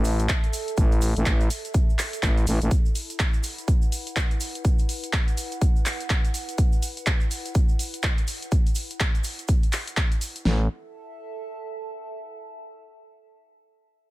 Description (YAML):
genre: bass house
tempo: 124 BPM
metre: 4/4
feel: swing 60% on 16ths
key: unclear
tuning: A4 = 440 Hz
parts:
  - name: growling FM bass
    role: bass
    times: 0.0-2.7, 10.5-10.7 s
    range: A1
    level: -22 LUFS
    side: equal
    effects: overdrive, sidechain pumping
  - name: tube shaker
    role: percussion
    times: 0.0-10.4 s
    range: none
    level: -38 LUFS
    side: right 6 dB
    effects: none
  - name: warbly tape-like pad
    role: texture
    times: 0.0-12.3 s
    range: E4 to A5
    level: -38 LUFS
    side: right 2 dB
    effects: chorus, built-in reverb, sidechain pumping
  - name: big-room dance drum kit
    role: drums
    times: 0.1-10.4 s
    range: handclaps, hi-hat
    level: -30 LUFS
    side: equal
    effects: small room ambience
  - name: big-room dance drum kit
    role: drums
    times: 0.3-10.6 s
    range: kick drum, snare drum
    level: -22 LUFS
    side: equal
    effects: small room ambience
room: little or no reverb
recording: none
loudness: -22 LUFS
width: side -18 dB against mid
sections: 0.0-10.5 A section; 10.5-12.4 B section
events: fade-out on ambient pad 0.0-10.5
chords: 0.0 A5; 2.7 Esus2; 10.5 A5